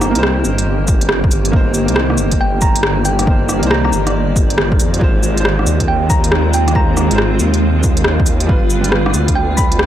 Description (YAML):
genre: future garage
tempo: 138 BPM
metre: 4/4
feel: swing 64% on 16ths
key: C minor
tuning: A4 = 439 Hz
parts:
  - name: thumb-piano-like synth pluck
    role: melody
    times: 0.0-9.9 s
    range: G5 to B5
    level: -22 LUFS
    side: equal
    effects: chorus, cassette tape, analog delay
  - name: clear upright piano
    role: accompaniment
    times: 0.0-9.9 s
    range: G3 to C5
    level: -23 LUFS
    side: right 1 dB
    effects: vintage 12-bit sampler grit, sidechain pumping, analog delay
  - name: granular cloud pad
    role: sustained chords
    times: 0.0-9.9 s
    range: D3 to D5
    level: -20 LUFS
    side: right 1 dB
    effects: built-in reverb, sidechain pumping
  - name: swelling detuned saw bass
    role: bass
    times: 0.0-9.9 s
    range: G1 to F2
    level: -17 LUFS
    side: equal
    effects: sidechain pumping
  - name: organic electronic drum kit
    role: drums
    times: 0.0-9.9 s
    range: cabasa, hi-hat, rim click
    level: -18 LUFS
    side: equal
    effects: none
  - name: electronic kick drum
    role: drums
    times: 0.9-9.7 s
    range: none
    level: -15 LUFS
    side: equal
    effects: overdrive
  - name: wind-like tuned noise texture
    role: texture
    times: 6.6-9.9 s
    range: F4 to F5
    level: -31 LUFS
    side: right 2 dB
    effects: built-in reverb
room: digital ambience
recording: dry, gritty hardware recording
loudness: -12 LUFS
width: side -11 dB against mid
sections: 0.0-9.9 A section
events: none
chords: 0.0 Cm7; 5.0 Ab6; 8.5 G7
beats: 0.23 0.67 1.10 | 1.53 1.97 2.40 2.84 | 3.27 3.71 4.14 4.58 | 5.01 5.45 5.88 6.32 | 6.75 7.19 7.62 8.06 | 8.49 8.93 9.36 9.80